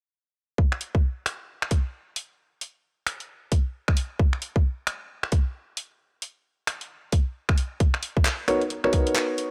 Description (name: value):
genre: UK garage, two-step garage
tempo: 133 BPM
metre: 4/4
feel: swing 61% on 16ths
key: unclear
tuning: A4 = 440 Hz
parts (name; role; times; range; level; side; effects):
- electronic kick drum; drums; 0.6-9.0 s; none; -24 LUFS; equal; none
- garage drum kit; drums; 0.7-9.5 s; finger snaps, handclaps, hi-hat; -31 LUFS; equal; none
- dark concert grand piano; stabs; 8.5-9.5 s; B3 to C#5; -26 LUFS; equal; analog delay
room: digital ambience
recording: dry, gritty hardware recording, transformer saturation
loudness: -26 LUFS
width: mono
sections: 0.6-9.5 A section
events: none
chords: 0.6 N.C.; 7.8 Bmaj9